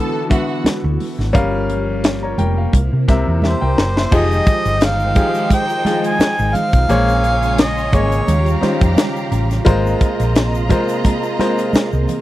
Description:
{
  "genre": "lush 1970s-style soul",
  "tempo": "87 BPM",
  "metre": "4/4",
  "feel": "swing 54% on 16ths",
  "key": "F minor from 4.1 s",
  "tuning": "A4 = 440 Hz",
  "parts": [
    { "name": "rich studio violin section", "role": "second line", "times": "0.0-12.2 s", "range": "Eb4 to Bb5", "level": "-26 LUFS", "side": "right 2 dB", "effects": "none" },
    { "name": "bright grand piano", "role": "accompaniment", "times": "0.0-12.2 s", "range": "C3 to C6", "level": "-21 LUFS", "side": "left 2 dB", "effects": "none" },
    { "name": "string machine, violins", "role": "sustained chords", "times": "0.0-12.2 s", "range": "C3 to G4", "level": "-25 LUFS", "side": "equal", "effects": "ensemble chorus" },
    { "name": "tight funk drum kit", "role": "drums", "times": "0.3-12.2 s", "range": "crash cymbal, hi-hat, kick drum, snare drum", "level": "-15 LUFS", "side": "equal", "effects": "none" },
    { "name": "congas", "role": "percussion", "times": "0.3-12.2 s", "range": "none", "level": "-24 LUFS", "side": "right 3 dB", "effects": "none" },
    { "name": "hollow-body short-scale fingered electric bass", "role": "bass", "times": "0.7-12.1 s", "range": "F1 to C3", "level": "-18 LUFS", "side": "equal", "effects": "none" },
    { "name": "mellow harmonica", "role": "melody", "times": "3.5-8.6 s", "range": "C5 to Ab5", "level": "-19 LUFS", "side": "equal", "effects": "none" },
    { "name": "egg shaker", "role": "percussion", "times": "4.1-12.2 s", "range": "none", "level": "-44 LUFS", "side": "right 14 dB", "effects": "none" }
  ],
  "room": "little or no reverb",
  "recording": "dry, close 1970s-style studio recording",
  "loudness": "-14 LUFS",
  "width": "side -15 dB against mid",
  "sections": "0.0-4.1 A section; 4.1-12.2 B section",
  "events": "drum fill 3.4-4.1",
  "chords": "0.0 D69; 1.3 Gm7b5; 2.7 C7; 4.1 Fm9; 6.9 Bbm9; 8.3 Eb13; 9.7 Ab69",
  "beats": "0.65 | 1.34 2.04 2.73 3.42 | 4.12 4.81 5.50 6.20 | 6.89 7.58 8.28 8.97 | 9.66 10.36 11.05 11.74"
}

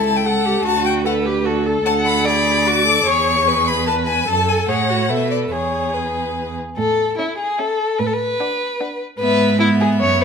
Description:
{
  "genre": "quick classical-period movement for string quartet",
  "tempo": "149 BPM",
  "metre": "3/4",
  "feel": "straight",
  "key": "A major",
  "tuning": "A4 = 440 Hz",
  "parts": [
    { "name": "clear violin", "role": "melody", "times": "0.0-10.2 s", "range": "B4 to D6", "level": "-20 LUFS", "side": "left 6 dB", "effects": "none" },
    { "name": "rich violin", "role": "second line", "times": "0.0-10.2 s", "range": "E4 to F#5", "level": "-20 LUFS", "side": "left 2 dB", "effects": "none" },
    { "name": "clear viola", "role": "accompaniment", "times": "0.0-10.2 s", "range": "B3 to B4", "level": "-24 LUFS", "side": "right 2 dB", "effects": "none" },
    { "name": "rich cello", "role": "bass", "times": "0.0-10.2 s", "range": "C#2 to B2", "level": "-21 LUFS", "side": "right 4 dB", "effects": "none" }
  ],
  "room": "wet stone room reverb, RT60 0.9 s",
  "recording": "minimal, uncompressed stereo recording",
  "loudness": "-16 LUFS",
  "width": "side -6 dB against mid",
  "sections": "0.0-6.8 A section; 6.8-10.2 B section",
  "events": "none",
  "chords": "0.0 A/C#; 0.7 D; 1.9 Bm7/D; 3.1 E; 4.3 F#m; 5.1 B7(no3); 5.5 E; 6.8 A; 8.0 Bm7/A; 9.2 E/G#",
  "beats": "0.25 | 0.65 1.05 1.45 | 1.85 2.26 2.66 | 3.06 3.47 3.87 | 4.28 4.69 5.10 | 5.52 5.94 6.36 | 6.78 7.19 7.59 | 8.00 8.40 8.80 | 9.20 9.61 10.01"
}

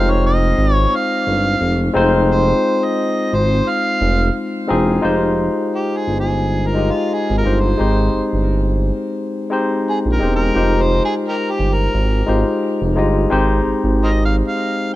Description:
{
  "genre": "lush 1970s-style soul",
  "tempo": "87 BPM",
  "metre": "4/4",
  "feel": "swing 54% on 16ths",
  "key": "F minor",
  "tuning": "A4 = 440 Hz",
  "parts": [
    { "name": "overdriven harmonica", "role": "melody", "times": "0.0-14.9 s", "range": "Eb4 to F5", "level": "-22 LUFS", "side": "right 1 dB", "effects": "tape echo" },
    { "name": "barky tine electric piano", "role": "accompaniment", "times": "0.0-15.0 s", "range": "G3 to Eb5", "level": "-18 LUFS", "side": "left 2 dB", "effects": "overdrive" },
    { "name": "smooth synth bass", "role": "bass", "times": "0.0-14.4 s", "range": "E1 to Bb1", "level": "-17 LUFS", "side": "equal", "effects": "none" }
  ],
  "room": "small room ambience",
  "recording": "rough home demo mix",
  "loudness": "-14 LUFS",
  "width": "side -16 dB against mid",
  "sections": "0.0-5.0 A section; 5.0-15.0 B section",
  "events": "harmonica solo 5.0-15.0",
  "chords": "0.0 Fm7; 5.0 Fm9; 7.8 Abmaj7; 10.6 Fm9; 13.3 Abmaj7",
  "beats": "0.23 0.92 1.60 | 2.29 2.98 3.67 4.35 | 5.04 5.73 6.42 7.11 | 7.80 8.49 9.18 9.87 | 10.55 11.24 11.93 12.62 | 13.31 14.00 14.69"
}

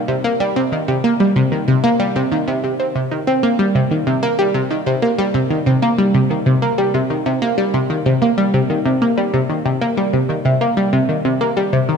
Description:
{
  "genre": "ambient",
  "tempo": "94 BPM",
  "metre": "4/4",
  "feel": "straight",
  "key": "C minor",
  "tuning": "A4 = 441 Hz",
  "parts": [
    { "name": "analog pluck", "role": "solo", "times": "0.1-12.0 s", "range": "C3 to C4", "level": "-14 LUFS", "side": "equal", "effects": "chorus, phaser, cassette tape, ping-pong delay" }
  ],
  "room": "wet concert hall reverb, RT60 2.3 s",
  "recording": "none",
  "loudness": "-15 LUFS",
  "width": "side -6 dB against mid",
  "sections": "0.0-12.0 A section",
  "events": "none",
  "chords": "none",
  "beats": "0.40 | 1.04 1.68 2.31 2.95 | 3.59 4.23 4.87 5.51 | 6.14 6.78 7.42 8.06 | 8.70 9.34 9.97 10.61 | 11.25 11.89"
}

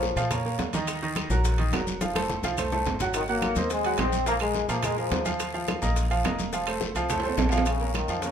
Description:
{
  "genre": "latin, salsa",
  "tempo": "212 BPM",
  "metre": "4/4",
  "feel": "straight",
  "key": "Bb minor",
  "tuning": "A4 = 440 Hz",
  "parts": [
    { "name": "mellow trombone section", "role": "melody", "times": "0.0-0.3, 3.2-5.2, 7.7-8.3 s", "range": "Db3 to C4", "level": "-28 LUFS", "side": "left 2 dB", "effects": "none" },
    { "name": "bright upright piano", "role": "accompaniment", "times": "0.0-8.3 s", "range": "Eb3 to Gb5", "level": "-29 LUFS", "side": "right 3 dB", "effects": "none" },
    { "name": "upright bass", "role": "bass", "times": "0.0-8.3 s", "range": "F1 to Bb2", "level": "-30 LUFS", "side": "equal", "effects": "none" },
    { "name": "bongos", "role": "percussion", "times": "0.0-8.3 s", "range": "none", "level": "-37 LUFS", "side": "left 6 dB", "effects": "none" },
    { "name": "congas", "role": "percussion", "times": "0.0-8.3 s", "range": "none", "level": "-35 LUFS", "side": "left 1 dB", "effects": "none" },
    { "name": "guiro", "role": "percussion", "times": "0.0-8.3 s", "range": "none", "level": "-40 LUFS", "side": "left 8 dB", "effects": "none" },
    { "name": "maracas", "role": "percussion", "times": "0.0-8.3 s", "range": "none", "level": "-40 LUFS", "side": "left 8 dB", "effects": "none" },
    { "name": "timbales", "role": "percussion", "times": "0.0-8.3 s", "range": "none", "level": "-34 LUFS", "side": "right 6 dB", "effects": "none" },
    { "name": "claves", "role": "percussion", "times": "0.3-8.1 s", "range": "none", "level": "-39 LUFS", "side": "right 8 dB", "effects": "none" }
  ],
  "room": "moderate large studio reverb, RT60 0.9 s",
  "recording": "minimal, uncompressed stereo recording",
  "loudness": "-24 LUFS",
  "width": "side -8 dB against mid",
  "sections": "0.0-7.7 A section",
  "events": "drum fill 2.0-3.1, 7.1-7.7",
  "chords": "0.0 Bbm; 0.9 Ebm; 2.0 F; 3.1 Ab7; 4.3 Bb5; 5.4 Ebsus2; 6.5 F; 7.7 Bbm",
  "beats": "0.03 0.31 0.59 | 0.88 1.16 1.44 1.72 | 2.01 2.29 2.57 2.85 | 3.14 3.42 3.70 3.99 | 4.27 4.55 4.83 5.12 | 5.40 5.68 5.96 6.25 | 6.53 6.81 7.10 7.38 | 7.66 7.95 8.23"
}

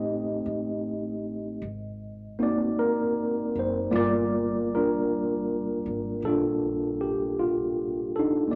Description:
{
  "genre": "jazz ballad",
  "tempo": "52 BPM",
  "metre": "4/4",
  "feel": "swing 68% on 8ths",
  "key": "unclear",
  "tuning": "A4 = 440 Hz",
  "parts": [
    { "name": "tine electric piano", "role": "accompaniment", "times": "0.0-8.6 s", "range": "G3 to Eb5", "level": "-28 LUFS", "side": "equal", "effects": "none" },
    { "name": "upright bass", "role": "bass", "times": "0.0-8.6 s", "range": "Gb1 to Bb1", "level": "-42 LUFS", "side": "equal", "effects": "none" }
  ],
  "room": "wet small room reverb, RT60 0.6 s",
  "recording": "none",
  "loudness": "-27 LUFS",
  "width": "mono",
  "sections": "0.0-8.6 A section",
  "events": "none",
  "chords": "0.0 Am7b5; 1.6 Ab9; 3.9 Gm7",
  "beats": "0.45 1.61 2.76 | 3.91 5.06 6.22 7.37 | 8.52"
}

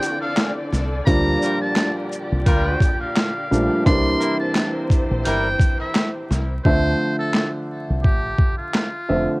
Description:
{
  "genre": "hip hop, boom-bap hip-hop",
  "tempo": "86 BPM",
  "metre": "4/4",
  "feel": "swing 56% on 16ths",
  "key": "D minor",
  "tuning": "A4 = 437 Hz",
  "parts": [
    { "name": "trumpet with metal mute", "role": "melody", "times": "0.0-9.4 s", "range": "F4 to C6", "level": "-26 LUFS", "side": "equal", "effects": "high-pass filter, low-pass filter, cassette tape" },
    { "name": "dark upright piano", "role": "accompaniment", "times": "0.0-9.4 s", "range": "Bb2 to E5", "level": "-23 LUFS", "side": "equal", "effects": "cassette tape, high-pass filter, low-pass filter" },
    { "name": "muted studio string section", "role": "sustained chords", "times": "0.0-6.6 s", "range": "Bb2 to D5", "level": "-31 LUFS", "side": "left 1 dB", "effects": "high-pass filter, low-pass filter" },
    { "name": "clear trumpet section", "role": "stabs", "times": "0.0-5.5 s", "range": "G3 to Bb4", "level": "-29 LUFS", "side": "equal", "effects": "high-pass filter, low-pass filter, tape echo" },
    { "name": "boom bap sampler-style drum kit", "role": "drums", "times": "0.0-8.9 s", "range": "handclaps, hi-hat, kick drum, shaker, snare drum", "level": "-19 LUFS", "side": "equal", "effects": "cassette tape" },
    { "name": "deep dub fingered electric bass", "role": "bass", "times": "0.7-9.3 s", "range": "F1 to D2", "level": "-23 LUFS", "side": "equal", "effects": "none" }
  ],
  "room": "small room ambience",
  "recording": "home recording on cassette, vinyl crackle",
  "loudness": "-18 LUFS",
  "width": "side -24 dB against mid",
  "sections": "0.0-6.7 A section; 6.7-9.4 B section",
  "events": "hi-hats muted 6.7-9.4",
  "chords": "0.0 Dm7; 1.1 Gm7; 3.9 C7; 6.7 Dm7",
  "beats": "0.37 | 1.07 1.77 2.46 3.16 | 3.86 4.56 5.25 5.95 | 6.65 7.35 8.04 8.74"
}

